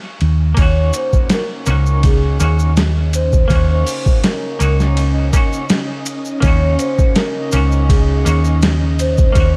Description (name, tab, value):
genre	trip hop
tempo	82 BPM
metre	4/4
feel	straight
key	Eb dorian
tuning	A4 = 440 Hz
part	hollow-body short-scale fingered electric bass	bass	0.2-9.6 s	Db2 to Eb2	-16 LUFS	equal	none
part	boom bap sampler-style drum kit	drums	0.2-9.5 s	hi-hat, kick drum, ride cymbal, snare drum	-19 LUFS	equal	none
part	semi-hollow electric guitar	accompaniment	0.5-9.6 s	Bb3 to Gb4	-27 LUFS	equal	tremolo, tape echo
part	pure breathy sine lead	melody	0.6-9.5 s	Ab4 to Db5	-25 LUFS	equal	phaser, lush chorus, tape echo
part	string machine, cellos	sustained chords	0.6-9.6 s	Db4 to Eb5	-28 LUFS	equal	ensemble chorus
part	maracas	percussion	0.6-9.5 s	none	-32 LUFS	equal	none
room	little or no reverb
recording	dark, warm production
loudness	-15 LUFS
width	mono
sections	0.0-9.6 A section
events	none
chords	0.0 Ebm7